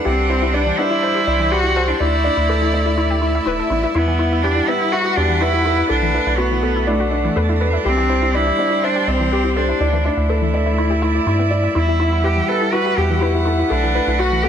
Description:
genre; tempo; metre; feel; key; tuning
piano and strings electronica; 123 BPM; 4/4; straight; E minor; A4 = 440 Hz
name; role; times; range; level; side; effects
rich string quartet; sustained chords; 0.0-14.5 s; G3 to G5; -24 LUFS; right 2 dB; none
felt-muted upright piano; riff; 0.0-14.5 s; D4 to D5; -21 LUFS; left 2 dB; ping-pong delay
rich cello; melody; 0.1-14.5 s; A3 to B4; -20 LUFS; right 1 dB; ping-pong delay
warbly dusty pluck; arpeggios; 0.1-14.5 s; E3 to E5; -27 LUFS; left 2 dB; chorus, ping-pong delay
round analog bass; bass; 0.1-14.5 s; D1 to G2; -20 LUFS; equal; none
swell; sound effects; 3.4-4.0 s; none; -29 LUFS; left 2 dB; none
room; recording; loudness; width
light reverb, small room ambience; none; -15 LUFS; side -8 dB against mid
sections
0.0-14.5 A section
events
swell 3.4-4.0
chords
0.0 Csus2; 2.0 Dsus2; 4.0 Emadd9; 5.9 Bm7; 7.9 Csus2; 9.8 Dsus2; 11.8 Emadd9; 13.7 Bm7

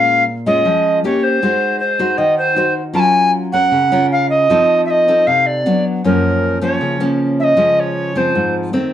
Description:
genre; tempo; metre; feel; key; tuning
bossa nova; 156 BPM; 4/4; straight; unclear; A4 = 440 Hz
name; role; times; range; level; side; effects
tenor recorder; melody; 0.0-8.5 s; Bb4 to A5; -14 LUFS; equal; none
nylon-string guitar; accompaniment; 0.0-8.9 s; Gb2 to C5; -17 LUFS; left 1 dB; none
room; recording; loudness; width
wet studio reverb, RT60 0.5 s; heard from further back in the room; -12 LUFS; side -10 dB against mid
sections
0.0-8.9 A section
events
none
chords
0.0 Bbm7; 1.0 Bbm69; 1.4 Ab7; 2.9 Gbmaj7; 4.5 F7; 5.6 Bm/F#; 6.0 Gbmaj7; 7.6 Dbmaj7

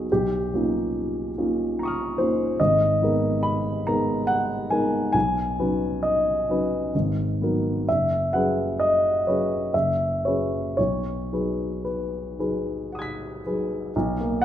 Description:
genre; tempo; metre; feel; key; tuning
classical, impressionist solo piano; 53-74 BPM; 3/4; rubato; B major; A4 = 439 Hz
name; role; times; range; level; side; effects
warm grand piano; solo; 0.0-14.4 s; F#1 to B6; -22 LUFS; equal; none
room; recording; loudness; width
wet recital hall reverb, RT60 1.4 s; minimal, uncompressed stereo recording; -22 LUFS; side -10 dB against mid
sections
0.0-13.9 A section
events
none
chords
0.1 D#9/B; 2.6 G#madd9; 5.1 B69; 6.9 G#m9; 7.9 F#sus24; 10.8 B6; 13.9 Bmaj7(no3)

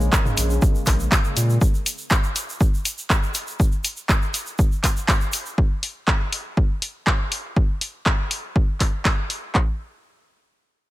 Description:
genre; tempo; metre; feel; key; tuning
acid house; 121 BPM; 4/4; straight; unclear; A4 = 440 Hz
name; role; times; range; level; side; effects
warm analog pad; sustained chords; 0.0-1.6 s; Db3 to Bb3; -29 LUFS; equal; chorus, tremolo, sidechain pumping
saturated sub bass; bass; 0.0-1.6 s; Bb1 to Bb2; -20 LUFS; equal; sidechain pumping
tube shaker; percussion; 0.0-5.6 s; none; -32 LUFS; right 2 dB; none
punchy analog drum machine; drums; 0.1-9.7 s; handclaps, kick drum; -19 LUFS; equal; none
punchy analog drum machine; drums; 0.1-9.4 s; handclaps, hi-hat, toms; -23 LUFS; equal; none
room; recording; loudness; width
little or no reverb; none; -19 LUFS; side -17 dB against mid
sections
0.0-9.5 A section; 9.5-10.9 B section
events
none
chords
0.0 Bbm7; 1.6 N.C.

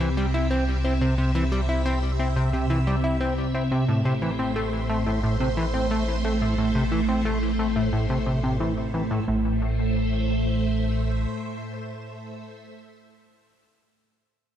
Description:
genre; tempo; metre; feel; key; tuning
ambient, sequencer-driven space music; 89 BPM; 4/4; straight; A minor; A4 = 439 Hz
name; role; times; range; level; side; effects
phased string machine; sustained chords; 0.0-12.6 s; A2 to E5; -26 LUFS; right 1 dB; ensemble chorus, phaser
plucky analog bass; riff; 0.0-9.6 s; A2 to E4; -26 LUFS; equal; ping-pong delay
warm sub bass; bass; 0.0-11.3 s; A1 to C2; -27 LUFS; equal; none
room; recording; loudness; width
wet echo chamber reverb, RT60 2.4 s; echo-heavy mix, cassette tape; -22 LUFS; side -10 dB against mid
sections
0.0-9.3 A section; 9.3-12.0 B section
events
none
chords
0.0 C; 3.9 Am

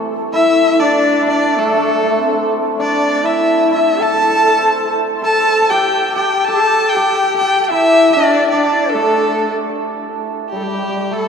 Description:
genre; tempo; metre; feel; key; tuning
chinese traditional, Chinese chamber ensemble; 97 BPM; 2/4; rubato; A yu mode; A4 = 439 Hz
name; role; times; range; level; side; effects
hammered dulcimer; second line; 0.0-11.3 s; E3 to C5; -18 LUFS; right 3 dB; none
rich erhu; melody; 0.3-11.3 s; G4 to A5; -17 LUFS; left 1 dB; none
bright reedy large dizi; second line; 0.3-11.3 s; G4 to C6; -19 LUFS; left 4 dB; none
rich horsehead fiddle; second line; 0.3-9.6 s; A3 to A4; -19 LUFS; left 2 dB; none
room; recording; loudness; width
wet cathedral reverb, RT60 5.2 s; recorded in a church or concert hall; -12 LUFS; side -6 dB against mid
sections
0.3-10.2 A section; 10.2-11.3 B section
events
none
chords
none

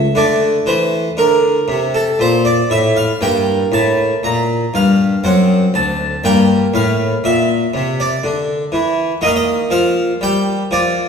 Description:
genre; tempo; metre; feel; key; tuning
classical, baroque-style suite movement for harpsichord; 60 BPM; 3/4; rubato; unclear; A4 = 440 Hz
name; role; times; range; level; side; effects
harpsichord; solo; 0.0-11.1 s; D2 to Bb5; -13 LUFS; equal; none
room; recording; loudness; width
wet recital hall reverb, RT60 1.4 s; heard from further back in the room; -13 LUFS; side -6 dB against mid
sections
0.0-11.1 A section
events
none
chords
0.2 D5; 3.2 Gm; 5.2 D7/F#; 6.2 Gm; 9.2 Eb

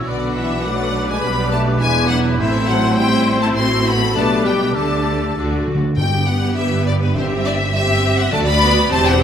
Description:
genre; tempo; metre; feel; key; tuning
quick classical-period movement for symphony orchestra; 102 BPM; 2/4; rubato; G major; A4 = 440 Hz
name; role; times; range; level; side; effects
clear clarinet; second line; 0.0-6.0 s; D4 to G4; -26 LUFS; left 2 dB; none
mellow hollow large flute ensemble; second line; 0.0-5.7 s; C6 to D6; -28 LUFS; left 3 dB; none
rich studio violin section; second line; 0.0-9.2 s; E4 to F#5; -24 LUFS; left 2 dB; none
warm oboe; second line; 0.0-5.7 s; A4 to C5; -28 LUFS; equal; none
warm studio viola section; accompaniment; 0.0-9.2 s; G3 to G4; -22 LUFS; right 1 dB; none
warm French horn section; sustained chords; 0.0-5.4 s; D3 to C4; -24 LUFS; left 4 dB; none
rich studio cello section; bass; 0.0-9.2 s; D2 to D3; -22 LUFS; right 3 dB; none
rich studio double bass section; bass; 0.0-9.2 s; E1 to D2; -23 LUFS; right 2 dB; none
rich studio violin section; melody; 0.1-9.2 s; B4 to C6; -21 LUFS; left 4 dB; none
timpani; percussion; 5.4-8.9 s; G2 to D3; -24 LUFS; left 1 dB; none
room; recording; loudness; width
wet scoring stage reverb, RT60 1.9 s; none; -14 LUFS; side -8 dB against mid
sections
0.0-6.0 A section; 6.0-9.2 B section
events
timpani fill 5.4-6.0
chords
0.1 Bm; 1.2 G/B; 1.8 E7; 2.4 Am; 3.6 F#dim/A; 4.2 G/B; 4.8 Dsus4; 5.4 D; 6.0 G; 7.2 C/G; 8.3 D

